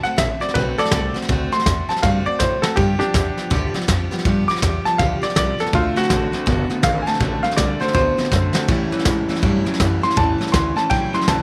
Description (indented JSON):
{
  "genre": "rockabilly",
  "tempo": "162 BPM",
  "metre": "4/4",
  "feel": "swing 64% on 8ths",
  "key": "D mixolydian",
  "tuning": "A4 = 440 Hz",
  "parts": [
    { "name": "bright upright piano", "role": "melody", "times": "0.0-11.4 s", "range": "D4 to D6", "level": "-23 LUFS", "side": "equal", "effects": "none" },
    { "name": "picked steel-string acoustic guitar", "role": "accompaniment", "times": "0.0-11.4 s", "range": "G2 to G4", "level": "-29 LUFS", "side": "equal", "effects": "none" },
    { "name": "upright bass", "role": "bass", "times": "0.0-11.4 s", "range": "F#1 to A2", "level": "-25 LUFS", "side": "equal", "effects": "none" },
    { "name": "soft brush drum kit", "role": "drums", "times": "0.0-11.4 s", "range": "hi-hat, kick drum, snare drum", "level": "-24 LUFS", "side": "equal", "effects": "none" },
    { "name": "electric guitar through a small old amp", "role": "riff", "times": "5.7-11.4 s", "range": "A2 to B3", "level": "-26 LUFS", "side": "equal", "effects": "none" }
  ],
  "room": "light reverb",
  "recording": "none",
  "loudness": "-19 LUFS",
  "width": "mono",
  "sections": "0.0-11.4 A section",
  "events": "upright piano solo 0.0-11.4; drum fill 2.0-2.8, 8.3-8.7",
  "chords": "0.0 D7; 2.8 G7; 5.7 D7; 8.7 A7"
}